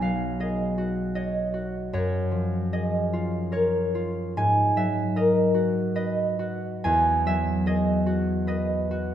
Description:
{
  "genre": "classical, solo harp piece",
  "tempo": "65-79 BPM",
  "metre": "3/4",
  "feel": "rubato",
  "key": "F# major",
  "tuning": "A4 = 440 Hz",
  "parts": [
    { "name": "concert harp", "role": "solo", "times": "0.0-9.1 s", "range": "B1 to G#5", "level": "-22 LUFS", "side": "equal", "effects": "none" }
  ],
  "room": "moderate scoring stage reverb, RT60 2.1 s",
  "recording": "none",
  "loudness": "-22 LUFS",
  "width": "side -10 dB against mid",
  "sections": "0.0-9.1 A section",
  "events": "none",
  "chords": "0.0 B69; 1.9 F#maj9; 4.4 G#m11; 6.8 Emaj9",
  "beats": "0.38 1.15 | 1.93 2.72 3.51 | 4.36 5.16 5.96 | 6.84 7.66 8.47"
}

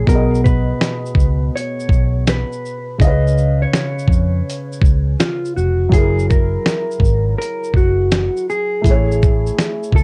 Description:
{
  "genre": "lo-fi hip hop",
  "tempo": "82 BPM",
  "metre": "4/4",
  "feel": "swing 65% on 16ths",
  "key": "B major",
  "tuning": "A4 = 440 Hz",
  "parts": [
    { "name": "mellow electric guitar", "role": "melody", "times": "0.0-10.0 s", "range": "E#4 to D#5", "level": "-24 LUFS", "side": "equal", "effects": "low-pass filter, cassette tape" },
    { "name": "felt-muted upright piano", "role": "accompaniment", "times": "0.0-10.0 s", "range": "B2 to E#5", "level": "-25 LUFS", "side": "equal", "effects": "cassette tape, low-pass filter" },
    { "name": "vintage muted fingered electric bass", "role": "bass", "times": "0.0-10.0 s", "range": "E#1 to E#2", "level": "-20 LUFS", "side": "equal", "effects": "transformer saturation" },
    { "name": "dusty soul sampler-style drum kit", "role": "drums", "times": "0.1-10.0 s", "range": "finger snaps, hi-hat, kick drum, shaker, snare drum", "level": "-18 LUFS", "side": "equal", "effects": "none" }
  ],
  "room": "light reverb",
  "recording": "home recording on cassette",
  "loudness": "-16 LUFS",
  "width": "mono",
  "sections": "0.0-10.0 A section",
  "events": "none",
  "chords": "0.1 B6; 3.0 C#7; 5.9 F#9; 8.9 Amaj7",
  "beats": "| 0.07 0.80 1.54 2.27 | 3.00 3.73 4.46 5.19 | 5.93 6.66 7.39 8.12 | 8.85 9.59"
}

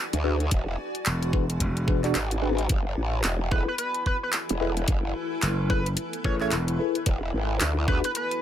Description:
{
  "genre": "glitch hop",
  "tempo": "110 BPM",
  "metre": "4/4",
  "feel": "swing 60% on 16ths",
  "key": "F# minor",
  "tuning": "A4 = 445 Hz",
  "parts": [
    { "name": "granular cloud pad", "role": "texture", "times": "0.0-8.4 s", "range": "E4 to G#5", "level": "-35 LUFS", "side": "left 2 dB", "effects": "built-in reverb, sidechain pumping" },
    { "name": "growl bass", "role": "bass", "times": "0.1-8.0 s", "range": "E1 to D2", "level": "-26 LUFS", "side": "equal", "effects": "chorus, tube saturation" },
    { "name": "drum and bass drum kit", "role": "drums", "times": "0.1-8.4 s", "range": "handclaps, hi-hat", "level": "-28 LUFS", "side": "equal", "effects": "overdrive" },
    { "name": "mellow tine electric piano", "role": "stabs", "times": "0.2-8.0 s", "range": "D4 to E5", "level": "-30 LUFS", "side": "left 2 dB", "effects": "medium stereo tremolo, sidechain pumping, ping-pong delay" },
    { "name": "electronic kick drum", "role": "drums", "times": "0.5-8.0 s", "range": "none", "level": "-26 LUFS", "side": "equal", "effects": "none" },
    { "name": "gritty slap bass", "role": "bass", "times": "1.1-2.1, 5.4-6.8 s", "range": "E1 to A1", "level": "-27 LUFS", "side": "equal", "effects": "overdrive" },
    { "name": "sync lead", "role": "melody", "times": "3.5-8.4 s", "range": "B4 to C#5", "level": "-31 LUFS", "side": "right 1 dB", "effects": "chorus, ping-pong delay" }
  ],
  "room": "light reverb",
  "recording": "none",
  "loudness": "-24 LUFS",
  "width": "side -10 dB against mid",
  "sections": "0.0-8.4 A section",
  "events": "none",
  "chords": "0.0 E9; 2.7 F#m11; 7.1 E9",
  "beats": "| 0.52 1.06 1.61 2.15 | 2.70 3.24 3.79 4.33 | 4.88 5.42 5.97 6.52 | 7.06 7.61 8.15"
}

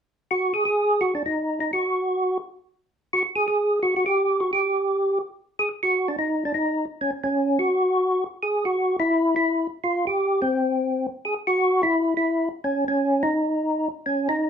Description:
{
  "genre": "jazz",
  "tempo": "170 BPM",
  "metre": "4/4",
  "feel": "swing 65% on 8ths",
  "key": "unclear",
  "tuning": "A4 = 440 Hz",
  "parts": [
    { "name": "percussive tonewheel organ", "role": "solo", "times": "0.3-14.5 s", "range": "B#3 to G#4", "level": "-21 LUFS", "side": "equal", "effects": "slow rotary speaker, chorus vibrato" }
  ],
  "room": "wet studio reverb, RT60 0.6 s",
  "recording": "band playing live in one room",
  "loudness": "-21 LUFS",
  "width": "side -7 dB against mid",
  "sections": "0.0-5.6 A section; 5.6-14.5 B section",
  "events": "none",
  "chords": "none",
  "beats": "0.28 0.63 0.99 | 1.34 1.69 2.04 2.40 | 2.75 3.10 3.45 3.81 | 4.16 4.51 4.86 5.22 | 5.57 5.92 6.28 6.63 | 6.98 7.33 7.69 8.04 | 8.39 8.74 9.10 9.45 | 9.80 10.15 10.51 10.86 | 11.21 11.56 11.92 12.27 | 12.62 12.97 13.33 13.68 | 14.03 14.39"
}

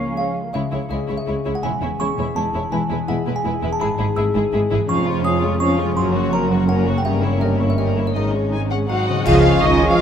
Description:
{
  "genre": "cinematic, playful, whimsical film cue",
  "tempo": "165 BPM",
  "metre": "3/4",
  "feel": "straight",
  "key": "C# minor, Db major from 4.9 s",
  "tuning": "A4 = 439 Hz",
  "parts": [
    { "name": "bright small flute group", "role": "second line", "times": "0.0-0.4, 9.3-10.0 s", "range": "F5 to Db6", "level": "-25 LUFS", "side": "right 1 dB", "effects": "none" },
    { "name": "dark cor anglais", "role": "second line", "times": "0.0-0.3, 9.3-10.0 s", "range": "Ab4 to Db5", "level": "-30 LUFS", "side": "right 2 dB", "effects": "none" },
    { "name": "muted studio violin section", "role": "second line", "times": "0.0-10.0 s", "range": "C4 to Gb5", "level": "-26 LUFS", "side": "left 3 dB", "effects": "none" },
    { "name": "muted studio viola section", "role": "accompaniment", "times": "0.0-10.0 s", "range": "Eb3 to Ab4", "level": "-25 LUFS", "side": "right 2 dB", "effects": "none" },
    { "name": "concert harp", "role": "arpeggios", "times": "0.0-10.0 s", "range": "F2 to C#6", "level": "-24 LUFS", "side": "left 7 dB", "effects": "none" },
    { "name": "muted studio cello section", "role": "bass", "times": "0.0-10.0 s", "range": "C#2 to F3", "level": "-25 LUFS", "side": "right 3 dB", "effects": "none" },
    { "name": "music box", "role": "melody", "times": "0.2-10.0 s", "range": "Db5 to E6", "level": "-26 LUFS", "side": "right 3 dB", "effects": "none" },
    { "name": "muted studio violin section", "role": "melody", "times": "0.2-10.0 s", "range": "Eb4 to Ab5", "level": "-30 LUFS", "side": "left 4 dB", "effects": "none" },
    { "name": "dark French horn section", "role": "sustained chords", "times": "0.2-10.0 s", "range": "Eb3 to E4", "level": "-25 LUFS", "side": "left 3 dB", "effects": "none" },
    { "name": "muted studio double bass section", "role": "bass", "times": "0.5-10.0 s", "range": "E1 to C#2", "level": "-25 LUFS", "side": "right 3 dB", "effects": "none" },
    { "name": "cymbal swell, clash cymbals and concert bass drum", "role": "percussion", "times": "7.1-10.0 s", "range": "none", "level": "-27 LUFS", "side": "equal", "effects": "none" },
    { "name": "warm bassoon", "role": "accompaniment", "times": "9.3-10.0 s", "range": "Ab3", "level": "-24 LUFS", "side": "right 2 dB", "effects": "none" }
  ],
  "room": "moderate scoring stage reverb, RT60 1.8 s",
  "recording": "close, detailed microphones",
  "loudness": "-17 LUFS",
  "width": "side -8 dB against mid",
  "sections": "0.5-9.3 A section",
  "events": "band accent 9.3-9.6",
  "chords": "0.0 Db; 0.5 C#m; 1.6 C#m/E; 2.7 E; 3.8 E/G#; 4.9 Db/F; 6.0 Gb; 7.1 Gdim7; 8.2 Absus4; 8.9 Ab; 9.3 Db",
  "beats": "0.17 | 0.54 0.91 1.27 | 1.63 2.00 2.36 | 2.72 3.08 3.45 | 3.81 4.17 4.53 | 4.89 5.25 5.61 | 5.97 6.33 6.69 | 7.05 7.42 7.78 | 8.15 8.53 8.89 | 9.27 9.63 10.00"
}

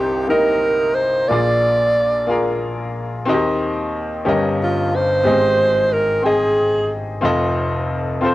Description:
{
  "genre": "gospel",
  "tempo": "61 BPM (dotted quarters)",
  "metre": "6/8",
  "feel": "straight",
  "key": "Eb major",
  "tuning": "A4 = 444 Hz",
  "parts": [
    { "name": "warm alto saxophone", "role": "melody", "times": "0.0-7.0 s", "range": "F4 to D5", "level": "-16 LUFS", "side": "right 1 dB", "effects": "cassette tape" },
    { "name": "clear grand piano", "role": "accompaniment", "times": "0.0-8.3 s", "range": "F1 to G5", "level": "-19 LUFS", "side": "left 1 dB", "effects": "cassette tape" }
  ],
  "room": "moderate studio reverb, RT60 0.6 s",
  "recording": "home recording on cassette",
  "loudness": "-15 LUFS",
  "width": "side -16 dB against mid",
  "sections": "0.0-8.3 A section",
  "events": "none",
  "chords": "0.0 Cm7; 1.3 Bb7; 3.3 Eb6; 4.3 Eb7/G; 5.3 Abmaj7; 7.2 F7",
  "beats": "0.30 | 1.29 2.28 | 3.27 4.26 | 5.25 6.24 | 7.23 8.22"
}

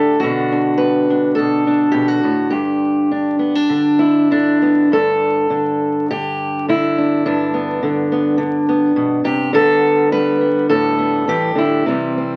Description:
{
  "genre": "folk, solo fingerstyle acoustic guitar",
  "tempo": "104 BPM",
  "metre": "4/4",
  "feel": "rubato",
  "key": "G major",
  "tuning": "A4 = 441 Hz",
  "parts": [
    { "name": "fingerpicked steel-string acoustic guitar", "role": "solo", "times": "0.0-12.4 s", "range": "G2 to B4", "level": "-16 LUFS", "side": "equal", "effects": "none" }
  ],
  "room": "moderate studio reverb, RT60 0.5 s",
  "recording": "very old 78 rpm record, vinyl crackle",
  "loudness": "-16 LUFS",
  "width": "mono",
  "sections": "0.0-4.9 A section; 4.9-12.4 B section",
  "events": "none",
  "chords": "0.2 Bm; 2.5 G; 4.9 Gadd9; 9.5 Dsus4; 11.9 C",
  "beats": "| 0.21 0.78 1.35 1.93 | 2.52 3.10 3.70 4.30 | 4.90 5.50 6.08 6.66 | 7.24 7.82 8.40 8.97 | 9.54 10.12 10.70 11.28 | 11.86"
}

